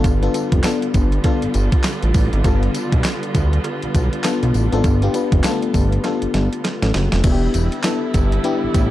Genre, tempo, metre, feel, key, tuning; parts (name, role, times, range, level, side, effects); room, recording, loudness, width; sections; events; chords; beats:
R&B, new jack swing; 100 BPM; 4/4; swing 60% on 16ths; A4 = 440 Hz
FM electric piano; accompaniment; 0.0-8.9 s; A3 to B4; -22 LUFS; left 4 dB; chorus
warm studio string section; sustained chords; 0.0-8.9 s; D3 to F4; -27 LUFS; right 2 dB
fat analog bass; bass; 0.0-8.9 s; E1 to D2; -18 LUFS; equal
crisp 8-bit digital drum machine; drums; 0.0-8.9 s; crash cymbal, handclaps, hi-hat, kick drum, snare drum, tambourine; -19 LUFS; equal; overdrive
cowbell; percussion; 0.0-6.8 s; -34 LUFS; right 8 dB
little or no reverb; dark, warm production; -16 LUFS; side -14 dB against mid
0.0-7.2 A section; 7.2-8.9 B section
drum fill 6.0-7.2
0.0 G7; 7.2 Em7
| 0.04 0.64 1.24 1.84 | 2.44 3.04 3.64 4.24 | 4.84 5.44 6.04 6.64 | 7.24 7.84 8.44